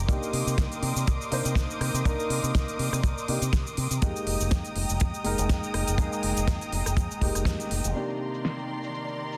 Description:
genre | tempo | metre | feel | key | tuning
nu-disco, nu disco | 122 BPM | 4/4 | swing 55% on 16ths | C minor | A4 = 439 Hz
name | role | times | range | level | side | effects
muted symphonic string section | sustained chords | 0.0-9.4 s | Eb3 to Eb6 | -37 LUFS | equal | sidechain pumping
fingered electric bass with an envelope filter | bass | 0.0-7.9 s | F1 to C3 | -32 LUFS | equal | tube saturation
dark baby grand piano | accompaniment | 0.1-9.4 s | C3 to C5 | -35 LUFS | equal | vintage 12-bit sampler grit, digital delay
kick drum | drums | 0.1-7.6 s | none | -29 LUFS | equal | studio reverb
pop drum kit | drums | 0.1-9.4 s | hi-hat, rim click, shaker, snare drum | -36 LUFS | equal | low-pass filter on hats, studio reverb, low-pass filter on perc, low-pass filter on snare
room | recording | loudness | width
light reverb, studio ambience | dense, heavily limited modern master | -27 LUFS | mono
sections
0.0-8.0 A section; 8.0-9.4 B section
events
band accent 7.5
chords
0.1 Cm9; 4.0 Fm11; 8.0 Cm9

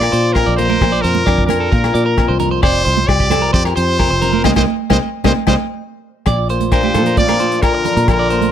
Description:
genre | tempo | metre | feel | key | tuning
highlife guitar band | 132 BPM | 4/4 | straight | Bb major | A4 = 441 Hz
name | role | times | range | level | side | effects
brilliant trumpet | melody | 0.0-8.5 s | Bb4 to D5 | -18 LUFS | equal | none
nylon-string guitar | accompaniment | 0.0-8.5 s | F2 to G4 | -21 LUFS | left 6 dB | none
electric guitar at the edge of break-up | arpeggios | 0.0-8.5 s | G4 to Eb5 | -20 LUFS | right 5 dB | slapback echo, plate reverb
fingered electric bass | bass | 0.0-8.5 s | F1 to Bb2 | -18 LUFS | equal | none
warm soul drum kit | drums | 0.0-8.5 s | hi-hat, kick drum, rim click, snare drum | -18 LUFS | equal | none
agogo bells | percussion | 0.0-8.2 s | none | -25 LUFS | left 21 dB | none
congas | percussion | 0.6-8.5 s | none | -21 LUFS | right 17 dB | none
brilliant trombone | second line | 6.7-8.5 s | D3 to F3 | -24 LUFS | left 6 dB | none
room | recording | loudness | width
light reverb | none | -12 LUFS | side -9 dB against mid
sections
0.0-6.3 A section; 6.3-8.5 B section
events
band accent 4.4-6.3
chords
0.0 Bb; 2.6 Fsus2; 4.4 Cm7; 6.3 Bb

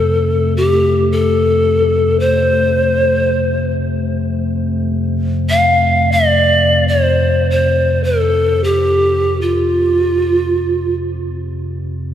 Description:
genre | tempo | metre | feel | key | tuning
world meditative, free-time meditation music | free time | none | none | F major pentatonic | A4 = 441 Hz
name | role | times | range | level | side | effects
breathy bright pan flute | melody | 0.0-10.9 s | F4 to F5 | -14 LUFS | equal | none
deep rumbling drone | drone | 0.0-12.1 s | F2 to C3 | -18 LUFS | equal | built-in reverb, phaser
glass harmonica | texture | 0.0-7.0 s | A3 | -23 LUFS | left 8 dB | none
room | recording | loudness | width
wet cathedral reverb, RT60 4.1 s | none | -12 LUFS | side -10 dB against mid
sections
0.0-12.1 A section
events
none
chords
none

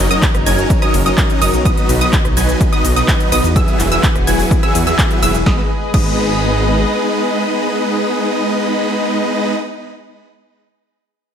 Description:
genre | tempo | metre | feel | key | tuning
EDM, festival progressive house | 126 BPM | 4/4 | straight | G# minor | A4 = 441 Hz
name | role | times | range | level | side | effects
lush unison pad | sustained chords | 0.0-9.1 s | E3 to D#5 | -22 LUFS | left 1 dB | chorus, sidechain pumping
wide unison pluck | arpeggios | 0.0-9.5 s | D#6 to G#6 | -21 LUFS | right 2 dB | sidechain pumping, digital delay
supersaw chords | riff | 0.0-9.5 s | F#3 to G#5 | -18 LUFS | equal | sidechain pumping, digital delay
detuned saw bass | bass | 0.0-6.9 s | E1 to E2 | -18 LUFS | equal | tube saturation, sidechain pumping
big-room dance drum kit | drums | 0.1-6.1 s | crash cymbal, handclaps, hi-hat, ride cymbal, rim click, shaker, snare drum | -22 LUFS | equal | overdrive
electronic kick drum | drums | 0.2-6.1 s | none | -16 LUFS | equal | overdrive
room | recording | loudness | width
light reverb, digital ambience | none | -12 LUFS | side -8 dB against mid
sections
0.0-5.5 A section; 5.5-9.3 B section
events
drop 0.0-5.5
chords
0.0 F#6; 1.7 B; 3.6 Eadd9; 5.5 G#m

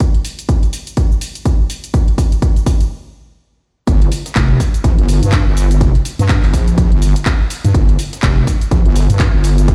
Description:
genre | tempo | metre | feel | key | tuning
bass house | 124 BPM | 4/4 | swing 58% on 16ths | G minor | A4 = 438 Hz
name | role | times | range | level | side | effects
electronic kick drum | drums | 0.0-9.7 s | none | -15 LUFS | equal | none
house drum kit | drums | 0.0-9.7 s | handclaps, hi-hat, shaker | -27 LUFS | equal | none
wobble bass | bass | 3.9-9.7 s | F1 to G2 | -15 LUFS | equal | chorus, sidechain pumping
breakbeat sampler-style drum kit | drums | 3.9-9.7 s | hi-hat, snare drum | -36 LUFS | equal | none
room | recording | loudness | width
little or no reverb | played on a big sound system in a bare room, stone room reverb | -14 LUFS | mono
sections
0.0-3.9 A section; 3.9-9.7 B section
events
build-up 0.0-3.9; drum fill 0.0-2.9; stop 2.9-3.9; drop 3.9-9.7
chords
none

